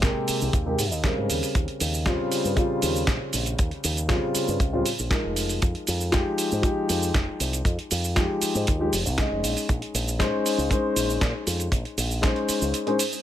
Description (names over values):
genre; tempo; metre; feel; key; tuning
nu-disco, nu disco; 118 BPM; 4/4; straight; unclear; A4 = 440 Hz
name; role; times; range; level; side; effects
dark baby grand piano; accompaniment; 0.0-13.0 s; C3 to Eb5; -26 LUFS; left 1 dB; sidechain pumping, tape echo
fingered electric bass with an envelope filter; bass; 0.0-12.7 s; F1 to Bb2; -28 LUFS; equal; tube saturation
dusty soul sampler-style drum kit; drums; 0.0-13.2 s; hi-hat, shaker, snare drum; -28 LUFS; right 2 dB; none
kick drum; drums; 0.0-12.3 s; none; -24 LUFS; equal; none
room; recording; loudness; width
small room ambience; none; -22 LUFS; side -12 dB against mid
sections
0.0-13.2 A section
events
none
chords
0.0 Abmaj9; 1.3 Fm9; 9.4 Bbm11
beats
0.03 0.54 1.04 | 1.55 2.06 2.57 3.08 | 3.59 4.10 4.61 5.11 | 5.62 6.13 6.64 7.15 | 7.66 8.16 8.67 9.18 | 9.69 10.20 10.71 11.21 | 11.72 12.23 12.74